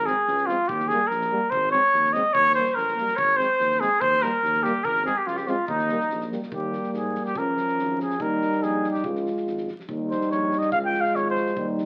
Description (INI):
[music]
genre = balkan folk, Balkan brass band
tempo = 143 BPM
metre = 2/4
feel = straight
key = Eb mixolydian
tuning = A4 = 438 Hz
[part]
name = dark trumpet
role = melody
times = 0.0-11.7 s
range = Eb4 to G5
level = -25 LUFS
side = equal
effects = none
[part]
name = mellow tuba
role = bass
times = 0.0-11.8 s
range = Ab1 to Ab2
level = -37 LUFS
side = equal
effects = none
[part]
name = dark French horn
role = accompaniment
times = 0.1-11.9 s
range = Bb3 to F4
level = -32 LUFS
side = equal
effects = none
[part]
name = mellow euphonium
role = accompaniment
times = 0.1-11.9 s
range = F3 to Ab3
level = -36 LUFS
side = equal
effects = none
[part]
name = loose indie drum kit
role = percussion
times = 0.1-11.8 s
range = kick drum, snare drum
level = -46 LUFS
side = equal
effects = none
[part]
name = bright clarinet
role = second line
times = 2.3-6.3 s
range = Eb4 to Db5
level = -31 LUFS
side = equal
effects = none
[sound]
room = moderate large studio reverb, RT60 0.9 s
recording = very old 78 rpm record, vinyl crackle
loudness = -24 LUFS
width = mono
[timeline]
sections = 0.0-6.5 A section; 6.5-11.9 B section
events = trumpet solo 6.5-11.9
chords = 0.0 Ab; 0.7 Eb; 1.5 Ab; 2.3 Eb; 3.2 Ab; 4.0 Eb; 4.8 Ab; 5.7 Eb; 7.4 Db; 8.2 Eb; 9.0 Db; 9.9 Eb; 10.7 Db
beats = 0.28 | 0.69 1.10 | 1.52 1.93 | 2.35 2.76 | 3.18 3.59 | 4.01 4.43 | 4.84 5.26 | 5.68 6.10 | 6.52 6.94 | 7.36 7.78 | 8.20 8.62 | 9.04 9.46 | 9.89 10.31 | 10.73 11.15 | 11.57